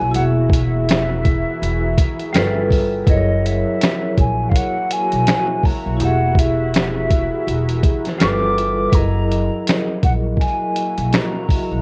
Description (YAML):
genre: lo-fi hip hop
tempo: 82 BPM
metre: 4/4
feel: swing 60% on 16ths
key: unclear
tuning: A4 = 440 Hz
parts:
  - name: breathy mellow jazz flute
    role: melody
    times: 0.0-11.8 s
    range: D#5 to D6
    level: -26 LUFS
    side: equal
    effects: low-pass filter
  - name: vibraphone with medium hard mallets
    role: accompaniment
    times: 0.0-11.8 s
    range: F#3 to E5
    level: -25 LUFS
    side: equal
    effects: cassette tape, low-pass filter
  - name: granular cloud pad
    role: sustained chords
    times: 0.0-11.8 s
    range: E3 to A#4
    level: -31 LUFS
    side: equal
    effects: built-in reverb, low-pass filter
  - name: upright bass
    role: bass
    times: 0.0-11.8 s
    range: E1 to B1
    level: -23 LUFS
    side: equal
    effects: none
  - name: lo-fi sampler-style drum kit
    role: drums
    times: 0.1-11.7 s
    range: finger snaps, hi-hat, kick drum, snare drum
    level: -20 LUFS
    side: equal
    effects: none
room: light reverb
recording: worn, warbling old tape, cassette tape, warbly pitch drift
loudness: -18 LUFS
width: mono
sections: 0.0-11.8 A section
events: none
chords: 0.1 Eadd9; 2.3 G9; 3.1 F#9; 6.0 Eadd9; 8.2 G9; 8.9 F#13